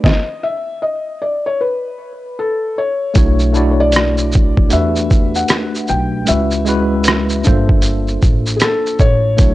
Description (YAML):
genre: lo-fi hip hop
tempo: 77 BPM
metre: 4/4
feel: swing 63% on 16ths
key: unclear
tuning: A4 = 440 Hz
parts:
  - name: felt-muted upright piano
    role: melody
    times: 0.0-9.5 s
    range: G#4 to G5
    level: -19 LUFS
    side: left 2 dB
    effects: low-pass filter
  - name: tine electric piano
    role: accompaniment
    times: 0.0-9.5 s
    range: G#3 to D5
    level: -18 LUFS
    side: equal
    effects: medium stereo tremolo, low-pass filter
  - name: lo-fi sampler-style drum kit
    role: drums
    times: 0.0-9.5 s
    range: hi-hat, kick drum, rim click, shaker, snare drum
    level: -14 LUFS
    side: equal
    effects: overdrive
  - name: upright bass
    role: bass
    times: 3.2-9.5 s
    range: G1 to E2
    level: -18 LUFS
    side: equal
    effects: none
room: little or no reverb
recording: dry, gritty hardware recording, cassette tape, nothing above 10.8 kHz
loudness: -13 LUFS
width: side -16 dB against mid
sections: 0.0-3.2 A section; 3.2-9.5 B section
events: stop 0.0-3.2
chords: 0.0 N.C.; 3.2 Bm11; 4.7 Em11; 6.3 C#m7; 7.4 Gm11